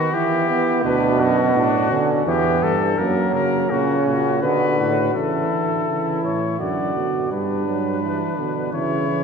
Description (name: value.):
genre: classical, imitative canzona for brass ensemble.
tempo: 84 BPM.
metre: 3/4.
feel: straight.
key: unclear.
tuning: A4 = 445 Hz.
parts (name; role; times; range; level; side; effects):
mellow trumpet; melody; 0.0-9.2 s; F#4 to D5; -23 LUFS; left 6 dB; none.
mellow flugelhorn; second line; 0.0-9.2 s; A#3 to F#4; -24 LUFS; right 4 dB; none.
mellow trombone; accompaniment; 0.0-9.2 s; B2 to B3; -22 LUFS; right 1 dB; none.
mellow bass trombone; bass; 0.8-9.2 s; D2 to D3; -25 LUFS; right 2 dB; none.
room: wet church reverb, RT60 3.3 s.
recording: recorded in a church or concert hall.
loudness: -18 LUFS.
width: side -6 dB against mid.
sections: 0.0-5.1 A section; 5.1-9.2 B section.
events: none.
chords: 0.1 Em; 0.8 Bm/D; 2.3 Emadd11; 3.0 F#; 4.4 Bm; 5.1 A/C#; 6.6 D/F#; 7.3 G; 8.7 C#m.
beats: 0.14 | 0.84 1.55 2.27 | 2.98 3.70 4.42 | 5.14 5.87 6.59 | 7.31 8.03 8.73.